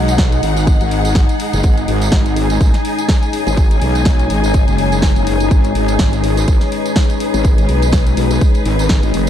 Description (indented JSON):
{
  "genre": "bass house",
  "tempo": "124 BPM",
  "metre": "4/4",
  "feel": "swing 56% on 16ths",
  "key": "G# minor",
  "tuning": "A4 = 440 Hz",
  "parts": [
    { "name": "deep dark ambient pad", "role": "sustained chords", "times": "0.0-9.3 s", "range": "G#3 to D#5", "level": "-20 LUFS", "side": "left 3 dB", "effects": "chorus, built-in reverb, sidechain pumping" },
    { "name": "wobble bass", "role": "bass", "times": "0.0-9.3 s", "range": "F#1 to B1", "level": "-17 LUFS", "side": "equal", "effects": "chorus, tube saturation, sidechain pumping" },
    { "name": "warm studio string section", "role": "texture", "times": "0.0-9.3 s", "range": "D#4 to G#5", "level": "-21 LUFS", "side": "left 2 dB", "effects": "sidechain pumping" },
    { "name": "house drum kit", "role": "drums", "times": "0.1-9.3 s", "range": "hi-hat, snare drum", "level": "-22 LUFS", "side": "equal", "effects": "none" },
    { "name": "tambourine", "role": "percussion", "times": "0.1-9.3 s", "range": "none", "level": "-31 LUFS", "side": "right 6 dB", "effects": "none" },
    { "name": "electronic kick drum", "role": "drums", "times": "0.2-9.0 s", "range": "none", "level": "-14 LUFS", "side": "equal", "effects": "none" }
  ],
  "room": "little or no reverb",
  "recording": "dark, warm production",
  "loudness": "-12 LUFS",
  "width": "side -10 dB against mid",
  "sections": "0.0-9.3 A section",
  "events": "none",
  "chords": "0.0 G#5",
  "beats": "0.19 0.67 1.16 | 1.64 2.12 2.61 3.09 | 3.58 4.06 4.54 5.03 | 5.51 5.99 6.48 6.96 | 7.45 7.93 8.41 8.90"
}